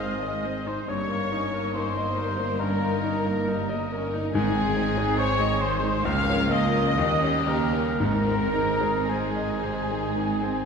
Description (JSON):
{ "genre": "classical", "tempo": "55-72 BPM", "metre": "4/4", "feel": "rubato", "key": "Ab major", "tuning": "A4 = 441 Hz", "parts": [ { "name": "clear baby grand piano", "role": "melody", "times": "0.0-10.7 s", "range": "Db2 to Eb5", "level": "-28 LUFS", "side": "left 1 dB", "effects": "none" }, { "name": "warm symphonic violin section", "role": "melody", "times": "0.0-10.7 s", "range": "Eb4 to Bb4", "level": "-37 LUFS", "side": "left 5 dB", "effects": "none" }, { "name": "mellow hollow silver concert flute", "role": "second line", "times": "0.0-10.7 s", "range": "Ab5 to F6", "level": "-32 LUFS", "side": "left 2 dB", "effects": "none" }, { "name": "rich symphonic violin section", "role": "second line", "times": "0.0-10.7 s", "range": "Ab4 to F5", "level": "-34 LUFS", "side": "left 4 dB", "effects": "none" }, { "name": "warm oboe", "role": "second line", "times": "0.0-10.7 s", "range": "Ab4 to F5", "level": "-35 LUFS", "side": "equal", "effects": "none" }, { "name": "warm symphonic viola section", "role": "accompaniment", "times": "0.0-10.7 s", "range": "C3 to Eb4", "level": "-34 LUFS", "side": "right 3 dB", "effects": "none" }, { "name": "mellow French horn section", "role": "sustained chords", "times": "0.0-10.7 s", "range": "G3 to Eb4", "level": "-34 LUFS", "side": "equal", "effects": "none" }, { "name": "dark trumpet", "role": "stabs", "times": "0.0-10.7 s", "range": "Ab4 to F5", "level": "-33 LUFS", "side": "right 2 dB", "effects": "none" }, { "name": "rich studio double bass section", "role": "bass", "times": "0.0-10.7 s", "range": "G1 to Eb2", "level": "-33 LUFS", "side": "right 2 dB", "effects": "none" }, { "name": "warm studio cello section", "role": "bass", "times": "0.0-10.7 s", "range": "Db2 to Ab2", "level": "-33 LUFS", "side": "right 2 dB", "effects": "none" }, { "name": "timpani", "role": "percussion", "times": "4.3-9.6 s", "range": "Ab2", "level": "-34 LUFS", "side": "right 1 dB", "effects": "none" } ], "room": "wet concert hall reverb, RT60 2.4 s", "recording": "heard from further back in the room", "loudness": "-22 LUFS", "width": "side -6 dB against mid", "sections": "0.0-10.7 A section", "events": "none", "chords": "0.0 Ab; 0.9 Eb7/G; 4.3 Ab; 6.0 Bbm/Db; 7.0 Eb7; 8.0 Ab" }